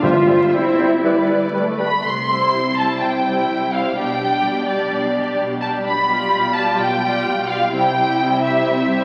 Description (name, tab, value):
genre	classical, dramatic, fast romantic movement for symphony orchestra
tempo	127 BPM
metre	4/4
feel	rubato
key	C major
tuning	A4 = 440 Hz
part	warm symphonic violin section	melody	0.0-9.0 s	D5 to C6	-22 LUFS	equal	none
part	clear clarinet	second line	0.0-1.9 s	B4 to C5	-29 LUFS	equal	none
part	dark cor anglais	second line	0.0-1.5 s	E4 to F4	-30 LUFS	equal	none
part	rich symphonic violin section	second line	0.0-9.0 s	E4 to D5	-29 LUFS	equal	none
part	clear bassoon	accompaniment	0.0-1.9 s	G3	-29 LUFS	equal	none
part	warm symphonic viola section	accompaniment	0.0-9.0 s	G3 to F4	-26 LUFS	equal	none
part	mellow French horn section	sustained chords	0.0-1.5 s	E4 to F4	-20 LUFS	equal	none
part	rich symphonic cello section	bass	0.0-9.0 s	B2 to F4	-28 LUFS	equal	none
part	rich symphonic double bass section	bass	0.0-9.0 s	G1 to C2	-35 LUFS	equal	none
part	timpani	percussion	0.0-0.8 s	G2	-28 LUFS	equal	none
room	wet scoring stage reverb, RT60 1.6 s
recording	very old 78 rpm record, vinyl crackle, nothing above 10.6 kHz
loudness	-18 LUFS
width	mono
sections	0.0-2.0 A section; 2.0-9.0 B section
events	none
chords	0.0 C/G; 1.0 G; 2.0 C; 4.0 G/B; 5.8 G7/B; 7.7 C